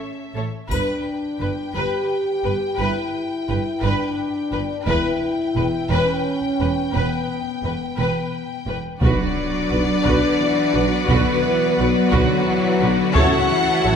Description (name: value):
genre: cinematic, epic orchestral film score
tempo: 58 BPM (dotted quarters)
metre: 6/8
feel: straight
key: B minor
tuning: A4 = 440 Hz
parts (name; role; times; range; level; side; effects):
- warm symphonic violin section; melody; 0.0-14.0 s; F#4 to G5; -28 LUFS; left 4 dB; none
- warm French horn section; sustained chords; 0.0-14.0 s; F#3 to G4; -23 LUFS; left 3 dB; none
- rich symphonic violin section; second line; 0.4-14.0 s; B4 to E5; -28 LUFS; left 3 dB; none
- rich symphonic viola section; accompaniment; 0.4-13.9 s; F#4 to C#5; -27 LUFS; right 1 dB; none
- rich studio cello section; bass; 0.4-14.0 s; E2 to F#3; -27 LUFS; right 4 dB; none
- rich symphonic double bass section; bass; 0.4-13.9 s; E1 to B1; -26 LUFS; right 3 dB; none
- taiko ensemble; drums; 0.7-13.8 s; none; -24 LUFS; right 1 dB; none
- triangle; percussion; 0.7-2.1 s; none; -42 LUFS; left 1 dB; none
- clear trombone section; sustained chords; 9.0-14.0 s; E3 to B3; -28 LUFS; right 3 dB; none
- rich symphonic string section; sustained chords; 9.0-14.0 s; B3 to A5; -29 LUFS; equal; none
- mellow tuba; bass; 9.0-14.0 s; A1 to B1; -27 LUFS; right 3 dB; none
- impact; sound effects; 9.0-11.1 s; none; -30 LUFS; equal; none
room: moderate scoring stage reverb, RT60 2.0 s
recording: none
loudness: -18 LUFS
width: side -7 dB against mid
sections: 0.0-9.0 A section; 9.0-14.0 A section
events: impact 9.0-11.1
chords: 0.0 A; 0.7 G; 4.9 Em; 9.0 Bm; 13.2 A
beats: | 0.71 1.75 | 2.79 3.83 | 4.87 5.90 | 6.94 7.98 | 9.02 10.05 | 11.09 12.12 | 13.16